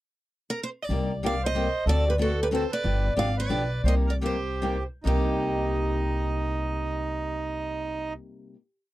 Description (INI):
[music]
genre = acoustic string swing (jazz manouche)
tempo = 130-186 BPM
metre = 3/4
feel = swing 61% on 8ths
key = C minor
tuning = A4 = 441 Hz
[part]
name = picked steel-string acoustic guitar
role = melody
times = 0.5-8.2 s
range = G4 to F5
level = -31 LUFS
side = right 1 dB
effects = none
[part]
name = picked steel-string acoustic guitar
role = accompaniment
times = 0.9-8.6 s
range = C3 to A4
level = -31 LUFS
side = left 3 dB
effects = none
[part]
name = upright bass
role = bass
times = 0.9-8.1 s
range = G1 to D2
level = -27 LUFS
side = equal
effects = none
[part]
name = accordion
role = second line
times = 1.3-8.1 s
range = Eb4 to D5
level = -32 LUFS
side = right 4 dB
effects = none
[sound]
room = little or no reverb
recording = dry, close 1970s-style studio recording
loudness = -24 LUFS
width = side -16 dB against mid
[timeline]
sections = 0.0-0.9 pickup bar; 0.9-5.1 A section; 5.1-7.8 final chord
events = slowing down 2.8-5.1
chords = 0.0 N.C.; 0.9 Cm9; 1.9 D7; 2.8 G7; 3.8 Cm7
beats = 0.25 0.57 | 0.90 1.22 1.54 | 1.86 2.19 2.51 | 2.83 3.16 3.50 | 3.85 4.22 4.62 | 5.06 5.52 5.98 | 6.44 6.90 7.36